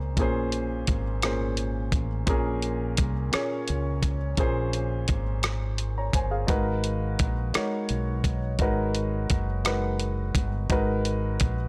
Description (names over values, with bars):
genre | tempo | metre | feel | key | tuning
slow six-eight R&B | 57 BPM (dotted quarters) | 6/8 | straight | Bb phrygian | A4 = 441 Hz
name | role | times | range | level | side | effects
warm concert grand piano | accompaniment | 0.0-11.7 s | Bb2 to Bb5 | -32 LUFS | equal | none
mellow fretless electric bass | bass | 0.0-11.7 s | Gb1 to Db2 | -31 LUFS | equal | tube saturation, lush chorus
dusty soul sampler-style drum kit | drums | 0.2-11.6 s | hi-hat, kick drum, rim click | -29 LUFS | equal | none
room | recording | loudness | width
little or no reverb | dry, gritty hardware recording | -27 LUFS | mono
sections
0.0-11.7 A section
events
none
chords
0.0 Bbm9; 6.5 Abm9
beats
| 0.17 1.22 | 2.28 3.33 | 4.38 5.43 | 6.49 7.54 | 8.59 9.64 | 10.70